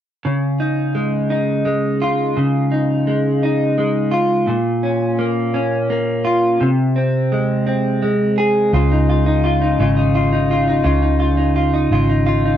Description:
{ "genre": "pop", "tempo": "57 BPM (dotted quarters)", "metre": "6/8", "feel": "straight", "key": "Db major", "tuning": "A4 = 440 Hz", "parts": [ { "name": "direct-recorded clean electric guitar", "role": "accompaniment", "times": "0.2-12.6 s", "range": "Bb2 to Ab4", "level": "-15 LUFS", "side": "equal", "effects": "double-tracked left and right, cassette tape" }, { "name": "vintage muted fingered electric bass", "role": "bass", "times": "8.7-12.6 s", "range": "Ab1 to Db2", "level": "-18 LUFS", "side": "equal", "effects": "none" } ], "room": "wet studio ambience, RT60 0.5 s", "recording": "home recording on cassette", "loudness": "-15 LUFS", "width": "side -10 dB against mid", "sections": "0.2-8.7 A section; 8.7-12.6 B section", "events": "none", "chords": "0.2 Dbadd9; 4.5 Bbm; 6.6 Ab/C; 8.7 Dbadd9", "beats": "| 0.25 1.31 | 2.37 3.43 | 4.49 5.54 | 6.61 7.67 | 8.72 9.79 | 10.85 11.91" }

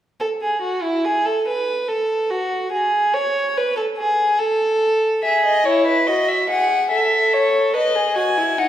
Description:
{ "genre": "classical, baroque-style fugue for string quartet", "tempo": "72 BPM", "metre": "3/4", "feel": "straight", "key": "unclear", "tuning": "A4 = 439 Hz", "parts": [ { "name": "rich violin", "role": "second line", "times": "0.2-8.7 s", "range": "D#4 to C#5", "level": "-18 LUFS", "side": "right 1 dB", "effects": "none" }, { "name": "rich violin", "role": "melody", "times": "5.2-8.7 s", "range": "B4 to G#5", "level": "-17 LUFS", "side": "left 2 dB", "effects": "none" } ], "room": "wet recital hall reverb, RT60 1.7 s", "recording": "heard from further back in the room", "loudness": "-16 LUFS", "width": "side -11 dB against mid", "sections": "0.2-8.7 A section", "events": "none", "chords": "0.2 N.C.; 5.2 E; 6.9 A; 7.7 B", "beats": "| 0.18 1.03 1.87 | 2.71 3.56 4.39 | 5.24 6.08 6.92 | 7.75 8.58" }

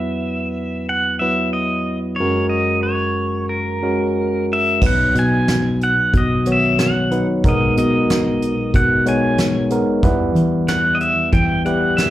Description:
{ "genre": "acoustic folk-pop ballad", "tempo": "92 BPM", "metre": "4/4", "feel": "straight", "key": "B major", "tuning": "A4 = 441 Hz", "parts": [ { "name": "pedal steel guitar", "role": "melody", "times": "0.0-12.1 s", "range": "A#4 to G#5", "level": "-20 LUFS", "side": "right 1 dB", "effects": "slapback echo" }, { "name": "tine electric piano", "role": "accompaniment", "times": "0.0-12.1 s", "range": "F#1 to C#5", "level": "-19 LUFS", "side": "equal", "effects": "none" }, { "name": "fingered electric bass", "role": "bass", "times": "4.8-12.1 s", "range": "B1 to E3", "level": "-20 LUFS", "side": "equal", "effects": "none" }, { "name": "soft brush drum kit", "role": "drums", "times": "4.8-12.1 s", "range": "crash cymbal, hi-hat, kick drum, snare drum", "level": "-20 LUFS", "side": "equal", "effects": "none" } ], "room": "little or no reverb", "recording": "live gig heard through the venue's PA, club reverb", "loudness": "-15 LUFS", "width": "side -14 dB against mid", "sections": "0.0-4.8 A section; 4.8-12.1 B section", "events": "none", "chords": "0.0 Esus2; 2.2 F#add9; 4.8 B; 7.4 G#madd9/B; 10.0 Em", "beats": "0.23 0.89 1.54 | 2.19 2.84 3.50 4.16 | 4.82 5.48 6.14 6.79 | 7.44 8.09 8.74 9.39 | 10.04 10.69 11.34 11.98" }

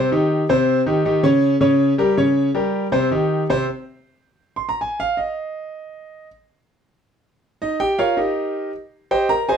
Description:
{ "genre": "latin", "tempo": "160 BPM", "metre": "4/4", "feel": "straight", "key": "unclear", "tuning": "A4 = 440 Hz", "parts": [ { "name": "clear concert grand piano", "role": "solo", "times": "0.0-9.6 s", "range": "C3 to C6", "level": "-17 LUFS", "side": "equal", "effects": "none" } ], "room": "light reverb", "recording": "close, detailed microphones", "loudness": "-17 LUFS", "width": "side -7 dB against mid", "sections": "0.0-3.7 A section; 3.7-9.6 B section", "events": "grand piano solo 3.7-9.6", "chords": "0.0 Cm; 1.4 Gdim/Db; 2.9 Cm; 3.7 N.C.; 7.4 Bbm; 8.2 Eb; 8.9 Abmaj7", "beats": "0.30 | 0.67 1.05 1.42 1.80 | 2.17 2.55 2.92 3.30 | 3.67 4.05 4.42 4.80 | 5.17 5.55 5.92 6.30 | 6.67 7.05 7.42 7.80 | 8.18 8.55 8.93 9.30" }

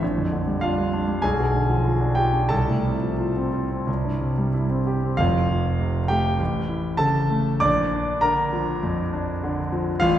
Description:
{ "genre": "classical, virtuoso piano study", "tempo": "87-102 BPM", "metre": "4/4", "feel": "rubato", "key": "F major", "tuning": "A4 = 441 Hz", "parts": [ { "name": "warm concert grand piano", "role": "solo", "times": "0.0-10.2 s", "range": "F1 to D6", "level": "-20 LUFS", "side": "equal", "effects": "none" } ], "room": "wet scoring stage reverb, RT60 2.0 s", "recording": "heard from further back in the room", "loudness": "-20 LUFS", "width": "side -11 dB against mid", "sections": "0.0-5.2 A section; 5.2-10.2 B section", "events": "none", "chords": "0.0 Gm7/Bb; 1.2 Bdim7; 2.5 F/C; 3.9 C; 5.2 F; 6.4 A7; 7.6 Bb", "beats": "| 0.02 0.62 1.23 1.85 | 2.51 3.20 3.88 4.54 | 5.18 5.79 6.40 6.99 | 7.62 8.23 8.83 9.42 | 10.01" }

